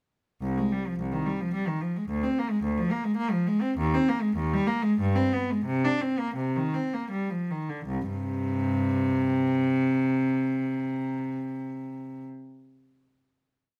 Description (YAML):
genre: classical, baroque-style suite movement for unaccompanied cello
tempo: 74-114 BPM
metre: 3/4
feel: rubato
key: C minor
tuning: A4 = 442 Hz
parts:
  - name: rich cello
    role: solo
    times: 0.4-12.2 s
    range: C2 to D4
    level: -28 LUFS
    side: equal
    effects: none
room: light reverb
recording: none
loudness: -27 LUFS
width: mono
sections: 0.4-7.9 A section; 7.9-12.5 final chord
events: slowing down 2.9-7.9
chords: 0.4 Cm; 2.1 Bb/D; 3.8 Eb; 5.0 G; 5.6 Cm; 7.9 C5